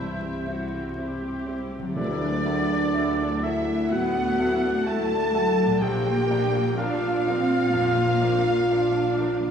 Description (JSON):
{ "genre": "cinematic, emotional film score for orchestra", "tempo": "62 BPM", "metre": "4/4", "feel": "rubato", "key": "unclear", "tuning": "A4 = 444 Hz", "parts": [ { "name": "warm studio violin section", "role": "melody", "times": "0.0-9.5 s", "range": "D5 to A5", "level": "-37 LUFS", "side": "right 1 dB", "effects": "none" }, { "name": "concert flute", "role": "second line", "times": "0.0-9.3 s", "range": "D5 to G6", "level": "-34 LUFS", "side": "equal", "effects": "none" }, { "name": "dark clarinet", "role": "second line", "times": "0.0-1.6 s", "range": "E4", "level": "-41 LUFS", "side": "right 2 dB", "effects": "none" }, { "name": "warm oboe", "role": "second line", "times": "0.0-9.3 s", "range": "C5 to A5", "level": "-34 LUFS", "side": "right 2 dB", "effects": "none" }, { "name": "warm symphonic violin section", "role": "second line", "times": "0.0-9.5 s", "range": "E4 to A5", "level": "-36 LUFS", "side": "equal", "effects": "none" }, { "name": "clear concert grand piano", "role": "accompaniment", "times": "0.0-9.5 s", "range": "Bb1 to C5", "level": "-33 LUFS", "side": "left 2 dB", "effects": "none" }, { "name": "warm symphonic viola section", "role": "accompaniment", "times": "0.0-9.5 s", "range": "F3 to G4", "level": "-33 LUFS", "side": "right 2 dB", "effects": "none" }, { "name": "mellow French horn section", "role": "sustained chords", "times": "0.0-9.5 s", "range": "E3 to A4", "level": "-25 LUFS", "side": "equal", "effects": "none" }, { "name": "concert harp", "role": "arpeggios", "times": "0.0-9.5 s", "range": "Bb2 to E4", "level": "-36 LUFS", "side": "left 4 dB", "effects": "none" }, { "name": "warm symphonic cello section", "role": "bass", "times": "0.0-9.5 s", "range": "F#3 to G4", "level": "-30 LUFS", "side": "right 2 dB", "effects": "none" }, { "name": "warm symphonic double bass section", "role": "bass", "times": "0.0-9.5 s", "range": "Bb1 to D2", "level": "-32 LUFS", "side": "right 1 dB", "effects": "none" }, { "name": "tam-tam", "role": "percussion", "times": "2.0-5.8 s", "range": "none", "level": "-38 LUFS", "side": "equal", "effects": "none" }, { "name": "timpani", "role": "percussion", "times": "2.0-3.4 s", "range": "D3", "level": "-35 LUFS", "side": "right 3 dB", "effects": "none" } ], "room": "wet scoring stage reverb, RT60 1.8 s", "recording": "vinyl crackle, small room reverb", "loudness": "-21 LUFS", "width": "side -7 dB against mid", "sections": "0.0-2.0 A section; 2.0-9.5 B section", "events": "band accent 2.0-2.9", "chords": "0.0 C; 2.0 Dadd9; 5.8 Bb" }